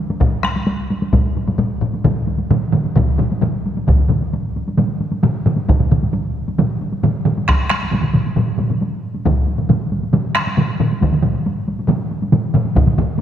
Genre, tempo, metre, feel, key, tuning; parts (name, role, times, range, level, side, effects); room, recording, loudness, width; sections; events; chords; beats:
japanese traditional, taiko drum ensemble; 134 BPM; 4/4; straight
taiko ensemble; percussion; 0.1-13.2 s; -23 LUFS; equal
taiko ensemble; percussion; 0.2-13.1 s; -20 LUFS; left 2 dB
taiko ensemble; percussion; 0.2-12.9 s; -19 LUFS; equal
taiko ensemble; percussion; 2.0-13.1 s; -20 LUFS; right 3 dB
wet concert hall reverb, RT60 2.1 s; -15 LUFS; side -10 dB against mid
0.0-3.9 A section; 3.9-13.2 B section
speeding up 0.0-13.2
| 0.20 0.67 1.13 1.59 | 2.05 2.51 2.97 3.42 | 3.88 4.33 4.79 5.24 | 5.69 6.14 6.59 7.04 | 7.48 7.93 8.37 8.82 | 9.26 9.70 10.14 10.58 | 11.02 11.46 11.89 12.33 | 12.76 13.19